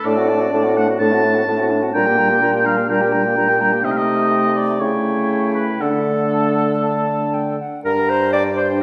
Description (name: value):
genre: quick classical-period movement for wind quintet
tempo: 115-128 BPM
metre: 4/4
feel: rubato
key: G minor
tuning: A4 = 440 Hz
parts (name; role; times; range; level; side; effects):
- concert flute; melody; 0.0-8.8 s; F#5 to Bb5; -29 LUFS; equal; none
- warm oboe; second line; 0.0-8.7 s; A4 to A5; -23 LUFS; equal; none
- clear clarinet; accompaniment; 0.0-8.8 s; D4 to D5; -26 LUFS; equal; none
- mellow French horn; accompaniment; 0.1-8.8 s; G3 to D4; -27 LUFS; equal; none
- mellow bassoon; bass; 0.1-8.8 s; G2 to D3; -22 LUFS; equal; none
room: wet recital hall reverb, RT60 1.4 s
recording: recorded in a church or concert hall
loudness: -17 LUFS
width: mono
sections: 0.0-7.9 A section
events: none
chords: 0.0 D7/A; 1.9 Gm/Bb; 3.8 Am7b5/C; 4.8 A7/C#; 5.8 D; 7.9 Gm